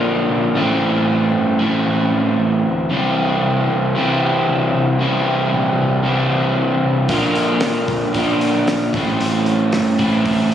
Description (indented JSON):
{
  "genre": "indie rock",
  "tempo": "115 BPM",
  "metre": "4/4",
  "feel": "straight",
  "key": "C mixolydian",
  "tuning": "A4 = 440 Hz",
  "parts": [
    { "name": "crunchy overdriven guitar", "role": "riff", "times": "0.0-10.5 s", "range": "A2 to F4", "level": "-16 LUFS", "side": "equal", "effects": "spring reverb" },
    { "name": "growling picked electric bass", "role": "bass", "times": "0.0-10.5 s", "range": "G1 to D2", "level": "-23 LUFS", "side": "left 1 dB", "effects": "overdrive" },
    { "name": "cloth-damped thuddy drum kit", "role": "drums", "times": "7.1-10.5 s", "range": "hi-hat, kick drum, snare drum", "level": "-26 LUFS", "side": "equal", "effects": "none" }
  ],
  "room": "light reverb",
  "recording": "recorded on a phone in the room, studio reverb, compression",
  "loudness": "-15 LUFS",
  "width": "side -10 dB against mid",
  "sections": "0.0-10.5 A section",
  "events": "none",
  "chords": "0.0 Bb; 0.6 Am; 2.9 C; 7.1 Bb; 8.9 Am"
}